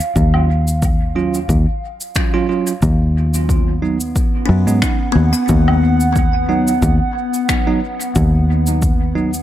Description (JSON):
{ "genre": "ambient dub", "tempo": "90 BPM", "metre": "4/4", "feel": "swing 55% on 16ths", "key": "unclear", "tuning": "A4 = 440 Hz", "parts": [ { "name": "warbly tape-like pad", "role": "sustained chords", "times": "0.0-9.4 s", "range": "B3 to F#5", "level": "-23 LUFS", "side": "right 2 dB", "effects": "chorus, built-in reverb" }, { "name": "cabasa, woodblock and finger snaps", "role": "drums", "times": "0.0-9.4 s", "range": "none", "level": "-25 LUFS", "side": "left 1 dB", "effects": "dub echo" }, { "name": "fingered electric bass", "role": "bass", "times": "0.2-9.4 s", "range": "Eb2 to Ab2", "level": "-15 LUFS", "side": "left 1 dB", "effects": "tube saturation" }, { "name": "electronic kick drum", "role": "drums", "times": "0.2-9.0 s", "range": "none", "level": "-18 LUFS", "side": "left 1 dB", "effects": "overdrive" }, { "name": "bell-like tine electric piano", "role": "stabs", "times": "1.2-9.3 s", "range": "Gb3 to F4", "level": "-22 LUFS", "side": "right 5 dB", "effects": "dub echo" }, { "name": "kalimba", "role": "arpeggios", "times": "4.5-7.3 s", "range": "B3 to F#5", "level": "-22 LUFS", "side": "left 4 dB", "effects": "dub echo" } ], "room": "studio reverb", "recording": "none", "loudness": "-13 LUFS", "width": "side -12 dB against mid", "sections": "0.0-9.4 A section", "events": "none", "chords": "0.0 Ebm9; 2.8 B/D#" }